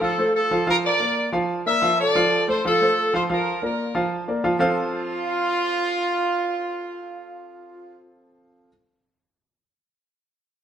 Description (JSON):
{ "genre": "latin", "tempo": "183 BPM", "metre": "4/4", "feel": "straight", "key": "F major", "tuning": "A4 = 441 Hz", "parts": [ { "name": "warm horn section", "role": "melody", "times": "0.0-8.0 s", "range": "F4 to E5", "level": "-22 LUFS", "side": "equal", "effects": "none" }, { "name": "warm concert grand piano", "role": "accompaniment", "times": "0.0-8.7 s", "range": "F3 to F5", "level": "-23 LUFS", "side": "equal", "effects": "none" } ], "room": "moderate stone room reverb, RT60 1.2 s", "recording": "band playing live in one room", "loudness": "-20 LUFS", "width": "side -9 dB against mid", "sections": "0.0-4.6 A section; 4.6-7.2 B section", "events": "none", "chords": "0.0 F; 0.7 Bb; 2.0 F; 3.3 Bb; 4.6 F" }